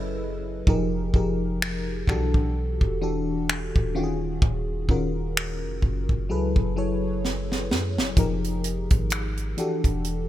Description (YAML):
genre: contemporary R&B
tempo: 64 BPM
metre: 4/4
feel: swing 58% on 16ths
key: unclear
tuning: A4 = 440 Hz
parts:
  - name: FM electric piano with soft pad layer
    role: accompaniment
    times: 0.0-10.3 s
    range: Eb3 to Eb5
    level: -28 LUFS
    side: left 2 dB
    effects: chorus, tremolo
  - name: soft 808-style bass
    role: bass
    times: 0.0-10.3 s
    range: Eb1 to Gb2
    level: -29 LUFS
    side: equal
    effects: none
  - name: tight funk drum kit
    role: drums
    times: 0.7-10.3 s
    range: finger snaps, hi-hat, kick drum, snare drum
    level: -23 LUFS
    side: equal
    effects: none
room: light reverb, studio ambience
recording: bright 1980s-style digital production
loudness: -23 LUFS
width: side -13 dB against mid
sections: 0.0-8.2 A section; 8.2-10.3 B section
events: drum fill 7.2-8.2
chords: 0.0 Gbm11; 0.7 Fm11; 2.1 Em11; 4.0 Ebm11; 6.3 Gbm11; 8.2 Fm11; 9.6 Em11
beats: | 0.67 1.61 2.54 3.48 | 4.42 5.36 6.29 7.23 | 8.17 9.11 10.04